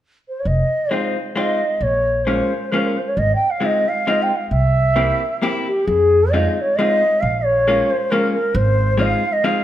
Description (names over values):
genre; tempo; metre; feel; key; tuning
musette waltz; 134 BPM; 3/4; straight; F minor; A4 = 439 Hz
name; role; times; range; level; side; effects
mellow bansuri; melody; 0.3-9.6 s; G4 to G5; -18 LUFS; equal; none
upright bass; bass; 0.5-9.1 s; F1 to F2; -19 LUFS; equal; none
vintage hollow-body jazz guitar; accompaniment; 0.9-9.6 s; Ab3 to G4; -21 LUFS; left 2 dB; none
room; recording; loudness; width
moderate recital hall reverb, RT60 1.5 s; none; -16 LUFS; side -12 dB against mid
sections
0.5-5.9 A section; 5.9-9.6 B section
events
none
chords
0.5 Fm7; 1.8 Bbm7; 3.2 Fm7/Ab; 4.5 C7; 5.9 Fm7; 7.2 Bbm7; 8.6 Fm7/Ab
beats
0.02 | 0.47 0.92 1.38 | 1.83 2.28 2.73 | 3.18 3.62 4.07 | 4.51 4.96 5.42 | 5.87 6.32 6.77 | 7.22 7.67 8.11 | 8.55 9.00 9.44